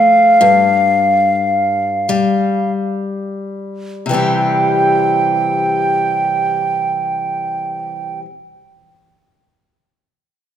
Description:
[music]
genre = celtic folk, Celtic slow air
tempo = 28-41 BPM (dotted quarters)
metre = 6/8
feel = rubato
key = C major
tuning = A4 = 440 Hz
[part]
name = bright wooden flute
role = melody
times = 0.0-8.2 s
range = F5 to G5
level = -14 LUFS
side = right 1 dB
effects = none
[part]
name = picked steel-string acoustic guitar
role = accompaniment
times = 0.0-8.3 s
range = G2 to G4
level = -19 LUFS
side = left 4 dB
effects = none
[sound]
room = wet scoring stage reverb, RT60 1.8 s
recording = minimal, uncompressed stereo recording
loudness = -13 LUFS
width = side -10 dB against mid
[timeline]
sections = 0.0-4.1 A section; 4.1-8.2 B section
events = slowing down 0.0-4.1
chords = 0.4 N.C.; 4.1 C

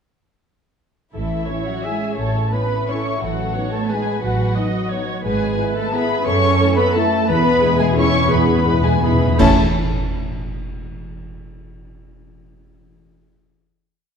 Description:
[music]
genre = classical, orchestral ballroom waltz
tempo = 160-192 BPM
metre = 3/4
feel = rubato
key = A major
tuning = A4 = 440 Hz
[part]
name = mellow clarinet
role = second line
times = 1.1-9.5 s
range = E4 to C#5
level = -27 LUFS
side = left 2 dB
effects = none
[part]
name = mellow large flute ensemble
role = second line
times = 1.1-9.6 s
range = E5 to C#6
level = -28 LUFS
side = left 2 dB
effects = none
[part]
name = muted studio violin section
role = second line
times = 1.1-9.6 s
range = E4 to C#5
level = -28 LUFS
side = left 2 dB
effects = none
[part]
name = muted studio viola section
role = accompaniment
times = 1.1-9.6 s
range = C#4 to E5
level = -25 LUFS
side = right 2 dB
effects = none
[part]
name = concert harp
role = arpeggios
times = 1.1-9.6 s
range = E2 to E5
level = -26 LUFS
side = left 8 dB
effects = none
[part]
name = muted studio cello section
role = bass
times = 1.1-9.6 s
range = E3 to C#4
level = -24 LUFS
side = right 5 dB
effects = none
[part]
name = muted studio double bass section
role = bass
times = 1.1-9.6 s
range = G#1 to F#2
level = -23 LUFS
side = right 3 dB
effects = none
[part]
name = muted studio violin section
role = melody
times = 1.2-9.6 s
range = E5 to C#6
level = -25 LUFS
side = left 4 dB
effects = none
[part]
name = mellow French horn section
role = sustained chords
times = 1.5-9.5 s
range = G#3 to E4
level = -28 LUFS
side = left 2 dB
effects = none
[part]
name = cymbal swell, clash cymbals and concert bass drum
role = percussion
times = 7.3-10.1 s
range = none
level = -24 LUFS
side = equal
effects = none
[part]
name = timpani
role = percussion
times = 7.3-9.6 s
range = E2 to A2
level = -23 LUFS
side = equal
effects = none
[sound]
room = moderate concert hall reverb, RT60 1.7 s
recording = dark, warm production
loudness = -16 LUFS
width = side -6 dB against mid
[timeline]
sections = 1.1-9.4 A section; 9.4-10.5 final chord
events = timpani fill 7.3-9.4; band accent 9.4-9.8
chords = 1.1 A; 3.2 B7/A; 5.2 E/G#; 6.3 F#m7; 7.3 E7; 9.4 A

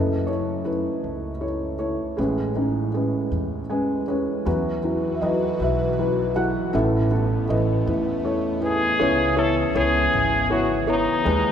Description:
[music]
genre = acoustic folk-pop ballad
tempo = 53 BPM (dotted quarters)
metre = 6/8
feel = straight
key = E major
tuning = A4 = 440 Hz
[part]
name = felt-muted upright piano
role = melody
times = 0.0-11.5 s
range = F#1 to G#5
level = -22 LUFS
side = equal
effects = none
[part]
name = upright bass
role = bass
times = 0.0-11.5 s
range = G#1 to F#2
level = -27 LUFS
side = right 1 dB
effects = none
[part]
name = airy breathy pad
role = sustained chords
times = 4.5-11.5 s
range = C#3 to B4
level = -30 LUFS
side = left 1 dB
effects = chorus
[part]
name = stopped French horn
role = second line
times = 8.6-11.5 s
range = D#4 to A4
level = -22 LUFS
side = left 1 dB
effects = none
[sound]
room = wet church reverb, RT60 3.5 s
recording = recorded in a church or concert hall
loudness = -20 LUFS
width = side -8 dB against mid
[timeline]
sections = 0.0-4.5 A section; 4.5-11.5 B section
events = felt piano fill 3.3-4.5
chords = 0.0 F#m7; 2.2 Amaj9; 4.5 Esus2; 6.7 Asus2; 9.0 C#m7

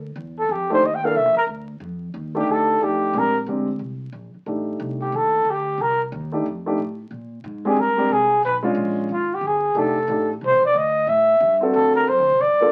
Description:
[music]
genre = jazz, small-group swing and bop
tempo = 182 BPM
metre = 4/4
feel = swing 63% on 8ths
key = F mixolydian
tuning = A4 = 440 Hz
[part]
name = upright bass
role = bass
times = 0.0-12.7 s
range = F1 to Bb2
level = -36 LUFS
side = equal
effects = none
[part]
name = breathy trumpet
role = melody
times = 0.4-12.7 s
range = F4 to G5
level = -20 LUFS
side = equal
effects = none
[part]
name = dark concert grand piano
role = accompaniment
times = 0.7-12.7 s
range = Ab3 to A4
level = -25 LUFS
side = equal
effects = none
[sound]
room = wet studio ambience, RT60 0.5 s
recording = very old 78 rpm record, vinyl crackle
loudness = -21 LUFS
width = mono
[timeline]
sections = 0.0-1.8 A section; 1.8-12.7 A section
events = none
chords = 0.5 F13; 1.2 Csus2; 1.8 F13; 3.1 Bb13; 4.5 Cm69/A; 5.8 Cm; 6.5 F13; 7.1 Bb13; 8.4 Bdim7; 9.8 F13; 11.1 Am7; 11.7 D7

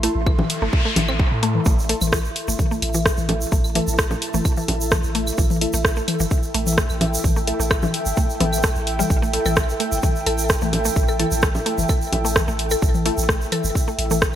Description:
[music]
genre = minimal techno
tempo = 129 BPM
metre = 4/4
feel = straight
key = A minor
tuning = A4 = 443 Hz
[part]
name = mallet-like synth pluck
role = riff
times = 0.0-14.1 s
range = E3 to A4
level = -28 LUFS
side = left 1 dB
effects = chorus, phaser, cassette tape, sidechain pumping, digital delay
[part]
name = filtered dub chord stab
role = stabs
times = 0.0-13.2 s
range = A3 to A4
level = -28 LUFS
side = equal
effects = phaser, lush chorus, digital delay
[part]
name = punchy sub bass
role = bass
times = 0.0-14.3 s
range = G1 to A2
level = -25 LUFS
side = equal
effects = sidechain pumping
[part]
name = house drum kit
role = drums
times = 0.0-14.3 s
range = hi-hat, rim click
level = -23 LUFS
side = equal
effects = small room ambience
[part]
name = noise sweep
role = sound effects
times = 0.3-1.7 s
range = none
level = -28 LUFS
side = equal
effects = none
[part]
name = warbly tape-like pad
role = texture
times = 0.0-14.4 s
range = E4 to C6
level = -27 LUFS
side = equal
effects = chorus, built-in reverb, sidechain pumping
[part]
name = electronic kick drum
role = drums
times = 0.3-14.3 s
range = none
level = -20 LUFS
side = equal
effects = small room ambience
[part]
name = electronic claves, toms and congas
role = percussion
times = 0.3-14.2 s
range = none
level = -26 LUFS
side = left 3 dB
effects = overdrive, small room ambience, digital delay
[part]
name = egg shaker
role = percussion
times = 1.7-14.3 s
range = none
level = -29 LUFS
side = right 4 dB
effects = none
[sound]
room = light reverb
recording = bright 1980s-style digital production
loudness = -18 LUFS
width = side -11 dB against mid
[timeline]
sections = 0.0-14.4 A section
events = noise sweep 0.3-1.7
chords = 0.0 A5

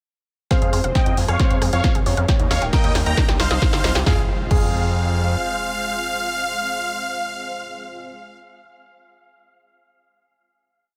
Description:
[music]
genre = uplifting trance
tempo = 135 BPM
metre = 4/4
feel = straight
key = F minor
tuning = A4 = 441 Hz
[part]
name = big supersaw lead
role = melody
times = 0.5-8.4 s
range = Ab4 to Bb5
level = -28 LUFS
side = equal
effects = sidechain pumping, low-pass filter, dub echo
[part]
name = dark concert grand piano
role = second line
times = 0.5-8.6 s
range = Bb3 to Db5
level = -32 LUFS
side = equal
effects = dub echo
[part]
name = plucky unison lead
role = second line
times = 0.5-8.4 s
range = F5 to Bb5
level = -35 LUFS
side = equal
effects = none
[part]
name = filtered supersaw swell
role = sustained chords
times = 0.5-8.1 s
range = F3 to F5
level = -35 LUFS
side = equal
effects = phaser, sidechain pumping
[part]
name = analog pluck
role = arpeggios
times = 0.5-4.6 s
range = Eb4 to Ab5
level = -34 LUFS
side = equal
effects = none
[part]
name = electronic kick drum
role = drums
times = 0.5-4.6 s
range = none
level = -22 LUFS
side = equal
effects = none
[part]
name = punchy analog drum machine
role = drums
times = 0.5-4.6 s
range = crash cymbal, hi-hat, rim click, snare drum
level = -29 LUFS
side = equal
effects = sidechain pumping on hats, sidechain pumping on cymbals
[part]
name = riser and impact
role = sound effects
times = 3.2-8.2 s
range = none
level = -35 LUFS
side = equal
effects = none
[part]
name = gritty driven synth bass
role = bass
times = 0.6-5.4 s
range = Eb1 to F2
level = -24 LUFS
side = equal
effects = sidechain pumping
[sound]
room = light reverb, digital ambience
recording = none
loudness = -20 LUFS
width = mono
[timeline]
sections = 0.5-4.1 build; 4.1-7.6 final chord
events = build-up 0.5-4.1; drum fill 0.5-4.1; filter sweep on supersaw synth 0.5-4.1; filter sweep on synth arpeggio sound 0.5-4.1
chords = 0.5 Fm; 1.4 Db/F; 2.3 Eb; 3.2 Cm; 4.1 Fm

